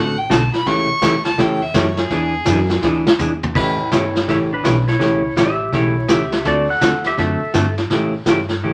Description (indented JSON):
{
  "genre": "country, western swing",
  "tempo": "166 BPM",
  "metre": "4/4",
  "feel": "swing 64% on 8ths",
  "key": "A mixolydian",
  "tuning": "A4 = 437 Hz",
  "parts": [
    { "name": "clear fiddle", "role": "second line", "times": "0.0-2.8 s", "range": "G#4 to C#6", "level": "-24 LUFS", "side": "equal", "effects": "none" },
    { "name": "hollow-body jazz guitar", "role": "accompaniment", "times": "0.0-8.7 s", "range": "C#3 to A4", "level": "-22 LUFS", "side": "equal", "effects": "none" },
    { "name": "upright bass", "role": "bass", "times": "0.0-8.7 s", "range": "G1 to A2", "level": "-26 LUFS", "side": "equal", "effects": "none" },
    { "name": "vintage brush drum kit", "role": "drums", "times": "0.3-8.7 s", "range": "brushed snare drum, crash cymbal, hi-hat, kick drum, snare drum, toms", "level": "-21 LUFS", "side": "equal", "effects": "none" },
    { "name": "clean lap steel guitar", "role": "melody", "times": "3.6-7.7 s", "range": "D4 to F#5", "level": "-23 LUFS", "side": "equal", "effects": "none" }
  ],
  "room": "wet studio reverb, RT60 0.5 s",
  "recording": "vinyl crackle",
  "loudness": "-17 LUFS",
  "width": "mono",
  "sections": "0.0-3.6 A section; 3.6-8.7 B section",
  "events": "fiddle solo 0.0-3.6; drum fill 2.8-3.6",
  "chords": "0.0 D7; 0.7 A7; 2.1 E9; 3.6 A9; 6.5 D9; 7.9 A7"
}